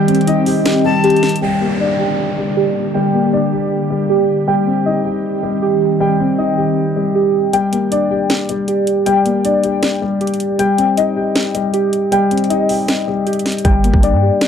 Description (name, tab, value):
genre	hip hop, trap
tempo	157 BPM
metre	4/4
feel	half-time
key	G minor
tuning	A4 = 444 Hz
part	dark concert grand piano	accompaniment	0.0-14.5 s	G3 to G4	-18 LUFS	left 4 dB	low-pass filter
part	ethereal airy pad	sustained chords	0.0-7.5 s	D3 to G4	-20 LUFS	right 1 dB	ensemble chorus, built-in reverb, low-pass filter
part	muted felt-like synth keys	arpeggios	0.0-14.5 s	G4 to G5	-17 LUFS	right 1 dB	chorus, phaser, low-pass filter, tape echo
part	trap drum kit	drums	0.1-1.4, 7.5-14.5 s	hi-hat, kick drum, snare drum	-18 LUFS	equal	none
part	breathy bright jazz flute	second line	0.8-1.4 s	A5	-24 LUFS	left 3 dB	tape echo
part	downlifter	sound effects	1.4-4.5 s	none	-28 LUFS	right 1 dB	none
part	long sustained 808-style bass	bass	13.6-14.3 s	G1 to G2	-15 LUFS	right 1 dB	none
room	little or no reverb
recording	dark, warm production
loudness	-13 LUFS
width	side -8 dB against mid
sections	0.0-1.4 A section; 1.4-7.5 B section; 7.5-14.5 C section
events	break 0.0-1.4; filter sweep 1.4-7.5; kick muted 7.5-13.6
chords	0.0 Cm; 1.4 Gm; 4.5 Cm; 7.5 Gm; 10.6 Cm; 13.6 Gm